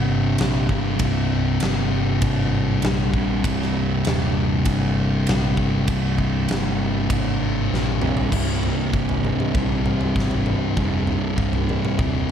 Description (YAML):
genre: stoner and doom metal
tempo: 98 BPM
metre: 4/4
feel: straight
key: unclear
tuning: A4 = 441 Hz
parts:
  - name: thick fuzz guitar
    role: riff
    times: 0.0-12.3 s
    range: C2 to C3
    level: -24 LUFS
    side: left 10 dB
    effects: distortion
  - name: thick fuzz guitar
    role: riff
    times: 0.0-12.3 s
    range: C2 to C3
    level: -24 LUFS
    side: right 7 dB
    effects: distortion
  - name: picked electric bass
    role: bass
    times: 0.0-12.3 s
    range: C1 to Bb1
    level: -26 LUFS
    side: equal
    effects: tube saturation
  - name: big rock drum kit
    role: drums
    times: 0.4-12.1 s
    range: crash cymbal, kick drum, ride cymbal, snare drum, toms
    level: -25 LUFS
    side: equal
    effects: none
room: little or no reverb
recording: none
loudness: -19 LUFS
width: side -8 dB against mid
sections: 0.0-8.3 A section; 8.3-12.3 B section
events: drum fill 7.7-8.3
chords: 0.0 C5